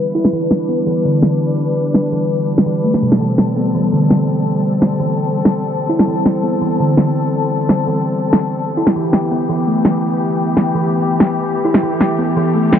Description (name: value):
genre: half-time drum and bass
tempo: 167 BPM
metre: 4/4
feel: swing 54% on 16ths, half-time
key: E minor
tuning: A4 = 440 Hz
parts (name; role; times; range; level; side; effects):
- dark studio string section; sustained chords; 0.0-12.8 s; E3 to B4; -18 LUFS; left 3 dB; none
- buzzing kalimba; arpeggios; 0.1-12.8 s; B2 to E4; -17 LUFS; right 1 dB; low-pass filter, ping-pong delay
- electronic snare drum; drums; 0.2-12.8 s; none; -16 LUFS; equal; none
room: light reverb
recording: dark, warm production, low-pass filter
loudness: -13 LUFS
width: side -9 dB against mid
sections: 0.0-12.8 A section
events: filter sweep on kalimba 0.0-12.8; filter sweep 0.0-12.8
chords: 0.0 Em; 3.2 Am7; 9.0 Em